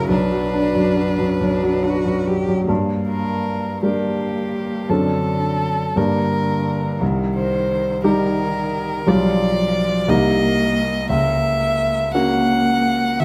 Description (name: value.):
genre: classical, slow romantic movement for piano trio.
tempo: 45-60 BPM (dotted quarters).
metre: 6/8.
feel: rubato.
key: G minor.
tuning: A4 = 440 Hz.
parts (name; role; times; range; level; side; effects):
rich violin; melody; 0.0-13.2 s; G4 to F#5; -25 LUFS; equal; none.
rich cello; second line; 0.0-13.2 s; D3 to G4; -27 LUFS; equal; none.
warm grand piano; accompaniment; 0.0-13.2 s; B1 to Bb4; -21 LUFS; equal; none.
room: moderate recital hall reverb, RT60 1.4 s.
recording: none.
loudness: -19 LUFS.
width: mono.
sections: 0.0-2.7 A section; 2.7-13.2 B section.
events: none.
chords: 0.1 Bm; 2.7 Gm; 4.9 D7/F#; 6.0 Gm; 7.0 Cm7; 9.1 G7/B; 10.1 Cm7; 11.1 F#7/C#.